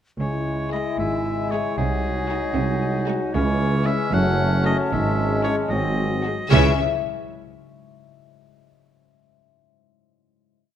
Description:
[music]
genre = cinematic, playful, whimsical film cue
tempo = 76 BPM (dotted quarters)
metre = 6/8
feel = straight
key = C# minor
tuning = A4 = 441 Hz
[part]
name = breathy clarinet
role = second line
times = 0.2-6.7 s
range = B#3 to E4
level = -32 LUFS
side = left 2 dB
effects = none
[part]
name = clear oboe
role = second line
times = 0.2-6.7 s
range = G#4 to F#5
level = -29 LUFS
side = right 1 dB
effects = none
[part]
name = mellow hollow silver concert flute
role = second line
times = 0.2-6.8 s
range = G#5 to A5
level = -34 LUFS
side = left 2 dB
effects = none
[part]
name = warm bassoon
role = accompaniment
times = 0.2-6.7 s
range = E3 to G#3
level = -30 LUFS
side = right 1 dB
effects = none
[part]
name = mellow French horn section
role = sustained chords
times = 0.2-6.7 s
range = E3 to F#4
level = -29 LUFS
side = left 4 dB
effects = none
[part]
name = concert harp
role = arpeggios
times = 0.2-6.8 s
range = F#2 to E5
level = -32 LUFS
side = left 12 dB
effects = none
[part]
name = clear studio cello section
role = bass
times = 0.2-6.8 s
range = F#2 to C#3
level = -28 LUFS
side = right 2 dB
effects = none
[part]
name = dark tuba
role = bass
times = 0.2-6.7 s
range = F#1 to C#2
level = -26 LUFS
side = right 2 dB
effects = none
[part]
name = rich studio double bass section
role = bass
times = 0.2-6.8 s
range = F#1 to C#2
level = -26 LUFS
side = right 2 dB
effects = none
[part]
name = warm studio violin section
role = melody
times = 0.7-6.8 s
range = C#4 to E5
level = -29 LUFS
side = left 4 dB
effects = none
[part]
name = warm studio violin section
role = second line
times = 0.7-6.8 s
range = B#3 to E4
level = -34 LUFS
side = left 3 dB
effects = none
[part]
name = warm studio viola section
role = accompaniment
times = 0.7-6.8 s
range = G#3 to A3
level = -31 LUFS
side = right 1 dB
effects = none
[sound]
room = moderate scoring stage reverb, RT60 1.6 s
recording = none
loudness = -19 LUFS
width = side -10 dB against mid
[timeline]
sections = 0.2-6.5 A section; 6.5-8.1 final chord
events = none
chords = 0.2 C#m; 1.8 G#7/B#; 3.3 C#m; 4.1 F#m; 4.9 C#m/G#; 5.7 G#7; 6.5 C#m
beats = | 0.20 0.99 | 1.77 2.56 | 3.34 4.13 | 4.92 5.71 | 6.51

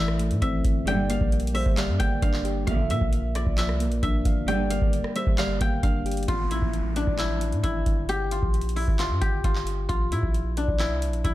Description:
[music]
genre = hip hop, trap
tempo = 133 BPM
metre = 4/4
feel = half-time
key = unclear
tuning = A4 = 441 Hz
[part]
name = guzheng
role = melody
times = 0.0-11.3 s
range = D4 to G5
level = -30 LUFS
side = left 2 dB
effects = low-pass filter
[part]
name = soft electric-piano-like synth keys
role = accompaniment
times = 0.0-6.3 s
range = E3 to F5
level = -29 LUFS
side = left 3 dB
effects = chorus, low-pass filter
[part]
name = long sustained 808-style bass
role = bass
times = 0.0-11.3 s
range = G1 to Bb2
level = -27 LUFS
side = equal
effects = none
[part]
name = booming analog drum machine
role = drums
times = 0.1-11.3 s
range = handclaps, hi-hat, kick drum, rim click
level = -27 LUFS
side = equal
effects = none
[part]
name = gliding portamento lead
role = second line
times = 0.9-6.2 s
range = C5 to F5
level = -34 LUFS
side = right 4 dB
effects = chorus, digital delay
[part]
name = warm studio string section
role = stabs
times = 0.9-4.9 s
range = F2 to D3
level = -32 LUFS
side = right 5 dB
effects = none
[part]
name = downlifter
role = sound effects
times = 6.3-9.9 s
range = none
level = -38 LUFS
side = equal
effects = none
[sound]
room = little or no reverb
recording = dark, warm production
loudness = -22 LUFS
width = side -15 dB against mid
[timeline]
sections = 0.0-6.3 A section; 6.3-11.3 B section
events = none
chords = 0.0 Am; 0.9 Gm7; 2.7 Bb; 4.5 Gm7; 6.3 A5; 8.1 Gm7; 9.9 Gm6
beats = 0.42 | 0.87 1.32 1.77 2.22 | 2.67 3.13 3.58 4.03 | 4.48 4.93 5.38 5.83 | 6.28 6.74 7.19 7.64 | 8.09 8.54 8.99 9.44 | 9.89 10.34 10.79 11.25

